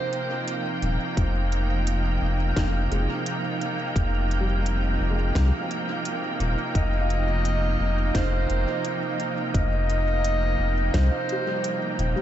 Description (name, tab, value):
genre	ambient dub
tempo	86 BPM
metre	4/4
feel	straight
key	F minor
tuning	A4 = 440 Hz
part	warm clarinet	melody	0.0-0.8, 6.8-11.9 s	C5 to Eb5	-30 LUFS	right 1 dB	dub echo
part	rich symphonic string section	sustained chords	0.0-12.2 s	C3 to G5	-29 LUFS	right 2 dB	none
part	felt-muted upright piano	arpeggios	0.0-12.2 s	G3 to G5	-36 LUFS	left 2 dB	dub echo
part	wind-like tuned noise texture	texture	0.0-12.2 s	F5	-35 LUFS	right 3 dB	built-in reverb
part	organic electronic drum kit	drums	0.1-12.1 s	hi-hat, snare drum	-36 LUFS	equal	overdrive, dub echo
part	warm sub bass	bass	0.8-12.1 s	Eb1 to C2	-24 LUFS	equal	none
part	electronic kick drum	drums	1.2-11.1 s	none	-26 LUFS	equal	overdrive
room	light reverb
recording	nothing above 7.9 kHz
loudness	-22 LUFS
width	side -11 dB against mid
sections	0.0-12.2 A section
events	none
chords	0.0 Fm9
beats	0.47 | 1.17 1.87 2.57 3.26 | 3.96 4.66 5.36 6.05 | 6.75 7.45 8.15 8.85 | 9.54 10.24 10.94 11.64